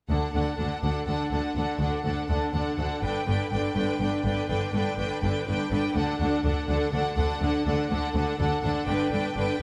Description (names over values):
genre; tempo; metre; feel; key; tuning
cinematic; 82 BPM (dotted quarters); 12/8; straight; D major; A4 = 442 Hz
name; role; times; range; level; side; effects
rich symphonic violin section; second line; 0.1-9.6 s; A4 to G5; -34 LUFS; equal; none
rich symphonic viola section; accompaniment; 0.1-9.6 s; D3 to D4; -32 LUFS; equal; none
rich studio double bass section; bass; 0.1-9.4 s; G1 to D2; -33 LUFS; equal; none
rich symphonic cello section; bass; 0.1-9.5 s; D2 to G2; -34 LUFS; equal; none
room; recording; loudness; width
wet recital hall reverb, RT60 1.7 s; none; -27 LUFS; mono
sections
0.1-9.6 A section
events
none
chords
0.1 D; 3.0 G; 6.0 D; 8.9 G